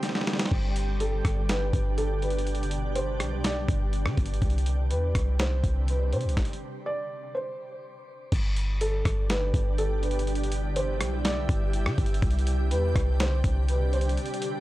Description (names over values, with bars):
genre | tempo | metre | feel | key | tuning
hip hop, atmospheric cloud-rap | 123 BPM | 4/4 | half-time | G major | A4 = 441 Hz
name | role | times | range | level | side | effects
felt-muted upright piano | melody | 0.0-14.2 s | A4 to D5 | -33 LUFS | equal | analog delay
shimmering ambient pad | sustained chords | 0.0-14.6 s | B2 to G4 | -34 LUFS | right 1 dB | chorus, built-in reverb, sidechain pumping
dusty soul sampler-style drum kit | drums | 0.0-14.5 s | crash cymbal, hi-hat, kick drum, rim click, snare drum | -29 LUFS | equal | none
warm 808-style bass | bass | 0.5-14.2 s | G1 to D3 | -26 LUFS | equal | none
room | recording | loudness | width
little or no reverb | dry, gritty hardware recording, transformer saturation | -24 LUFS | side -16 dB against mid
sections
0.0-8.3 A section; 8.3-14.6 B section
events
break 0.0-0.5, 14.2-14.6; drum fill 0.0-0.5; stop 6.4-8.3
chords
0.0 Csus2; 0.5 G; 4.4 Csus2; 8.3 G; 12.2 Csus2